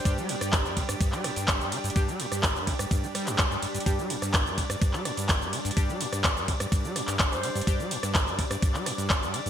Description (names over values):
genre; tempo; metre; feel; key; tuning
acid house; 126 BPM; 4/4; straight; unclear; A4 = 440 Hz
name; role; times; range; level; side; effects
breathy mellow jazz flute; melody; 0.0-0.2, 7.3-7.8 s; C5; -39 LUFS; left 1 dB; ping-pong delay
lush unison pad; sustained chords; 0.0-9.5 s; G3 to D5; -35 LUFS; equal; chorus, sidechain pumping
overdriven acid bass; riff; 0.1-9.5 s; G1 to G3; -33 LUFS; equal; ensemble chorus, cassette tape, sidechain pumping, ping-pong delay
band-passed chord stab; stabs; 0.1-7.7 s; G3 to G4; -39 LUFS; equal; none
booming analog drum machine; drums; 0.1-9.5 s; cabasa, handclaps, hi-hat, ride cymbal, rim click; -29 LUFS; equal; gated reverb
electronic kick drum; drums; 0.1-9.2 s; none; -26 LUFS; equal; none
room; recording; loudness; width
light reverb, digital ambience; bright 1980s-style digital production; -25 LUFS; side -9 dB against mid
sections
0.0-9.5 A section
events
none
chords
0.0 G5